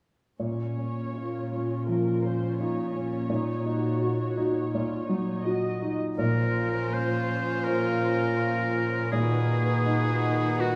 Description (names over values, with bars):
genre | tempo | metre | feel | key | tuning
cinematic, emotional film score for orchestra | 82 BPM | 4/4 | rubato | Bb minor | A4 = 438 Hz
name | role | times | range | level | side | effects
dark symphonic viola section | accompaniment | 0.4-10.8 s | D#3 to Eb5 | -35 LUFS | equal | none
warm grand piano | accompaniment | 0.4-10.8 s | Bb2 to C5 | -31 LUFS | equal | none
dark chamber cello section | bass | 0.4-10.8 s | Bb2 | -34 LUFS | equal | none
bright oboe | second line | 6.2-10.8 s | F#4 to C5 | -32 LUFS | equal | none
warm symphonic violin section | second line | 6.2-10.8 s | Db4 to F#4 | -34 LUFS | equal | none
warm symphonic double bass section | bass | 6.2-6.9 s | Bb1 | -34 LUFS | equal | none
room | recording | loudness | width
moderate concert hall reverb, RT60 2.1 s | small room ambience | -27 LUFS | mono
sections
0.4-6.2 A section; 6.2-10.8 B section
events
none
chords
0.4 Bbmadd9; 3.3 Ebm9/Bb; 6.2 Bbmadd9; 9.1 B/Bb